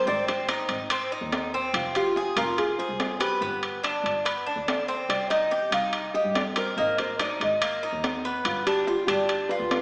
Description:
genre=latin, Cuban son and guajira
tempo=143 BPM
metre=4/4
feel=straight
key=unclear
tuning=A4 = 440 Hz
part: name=nylon-string guitar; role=melody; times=0.0-9.8 s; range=F4 to F5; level=-27 LUFS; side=equal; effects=none
part: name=Cuban tres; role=arpeggios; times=0.0-9.8 s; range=Bb3 to B4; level=-28 LUFS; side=equal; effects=none
part: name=warm double bass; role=bass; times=0.0-9.8 s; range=F1 to G2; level=-38 LUFS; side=equal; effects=none
part: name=timbales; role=percussion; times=0.3-9.8 s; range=none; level=-29 LUFS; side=equal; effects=none
room=wet scoring stage reverb, RT60 1.7 s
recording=recorded in a church or concert hall, small speaker sound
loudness=-23 LUFS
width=side -31 dB against mid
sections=0.0-9.8 A section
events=none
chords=0.1 Ab; 1.7 Fm; 3.4 G; 5.1 Cm; 6.8 Absus2; 8.5 G7

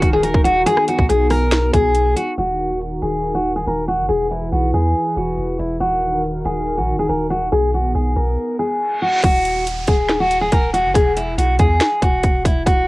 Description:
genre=hip hop, trap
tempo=140 BPM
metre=4/4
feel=half-time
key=Eb phrygian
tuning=A4 = 441 Hz
part: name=picked steel-string acoustic guitar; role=melody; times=0.0-12.9 s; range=E4 to Bb4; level=-18 LUFS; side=left 1 dB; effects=low-pass filter, tape echo
part: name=hollow soft pad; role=sustained chords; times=0.0-9.2 s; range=Eb3 to B4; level=-25 LUFS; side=right 1 dB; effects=chorus
part: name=long sustained 808-style bass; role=bass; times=0.0-12.9 s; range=Eb1 to E2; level=-22 LUFS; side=equal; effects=none
part: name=trap drum kit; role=drums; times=0.0-12.8 s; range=finger snaps, hi-hat, kick drum, rim click, snare drum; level=-17 LUFS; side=equal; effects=none
part: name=reverse cymbal and downlifter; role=sound effects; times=8.9-12.7 s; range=none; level=-31 LUFS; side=right 1 dB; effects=none
room=little or no reverb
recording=home recording on cassette, low-pass filter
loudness=-15 LUFS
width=side -20 dB against mid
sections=0.0-2.4 A section; 2.4-9.2 B section; 9.2-12.9 C section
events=filter sweep 2.4-9.2; reverse cymbal 8.9-9.2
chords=0.0 Ebm; 0.7 B; 2.4 Ebm; 4.1 E; 5.8 Ebm; 7.5 B; 9.2 Ebm; 11.0 E

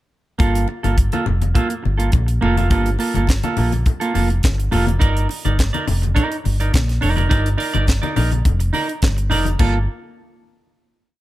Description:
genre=disco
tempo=105 BPM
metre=4/4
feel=straight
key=G minor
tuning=A4 = 440 Hz
part: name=semi-hollow electric guitar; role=accompaniment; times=0.4-9.8 s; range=Bb3 to D5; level=-22 LUFS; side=right 3 dB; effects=spring reverb
part: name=deep dub fingered electric bass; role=bass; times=0.4-9.9 s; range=F1 to Bb1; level=-18 LUFS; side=equal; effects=none
part: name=tight funk drum kit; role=drums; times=0.4-9.7 s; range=crash cymbal, handclaps, hi-hat, kick drum, snare drum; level=-19 LUFS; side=equal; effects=none
part: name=congas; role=percussion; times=0.4-9.9 s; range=none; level=-27 LUFS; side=left 6 dB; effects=none
room=little or no reverb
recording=none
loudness=-16 LUFS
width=side -16 dB against mid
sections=0.4-9.6 breakdown; 9.6-11.2 final chord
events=none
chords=0.4 Gm9; 5.0 F13sus4; 9.6 Gm9

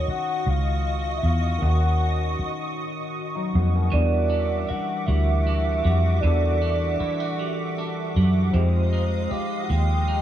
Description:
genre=slow six-eight R&B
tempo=52 BPM (dotted quarters)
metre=6/8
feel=straight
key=unclear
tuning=A4 = 440 Hz
part: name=soft octave-layered synth lead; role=melody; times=0.0-10.2 s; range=C5 to G5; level=-28 LUFS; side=right 1 dB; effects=chorus, tremolo
part: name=overdriven tine electric piano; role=accompaniment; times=0.0-10.2 s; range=Eb3 to Bb4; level=-31 LUFS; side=left 3 dB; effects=wide subtle chorus
part: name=hollow soft pad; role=sustained chords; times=0.0-10.2 s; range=Ab3 to Eb6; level=-31 LUFS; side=right 1 dB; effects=ensemble chorus
part: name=vintage muted fingered electric bass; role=bass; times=0.0-10.2 s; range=Db2 to F#2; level=-21 LUFS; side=equal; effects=none
part: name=clean electric guitar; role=second line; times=3.9-10.2 s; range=E3 to G4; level=-32 LUFS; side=right 7 dB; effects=none
room=digital ambience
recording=small room ambience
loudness=-21 LUFS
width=side -11 dB against mid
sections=0.0-10.2 A section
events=none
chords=0.0 Ebm9; 3.9 Em9; 8.5 Fm9

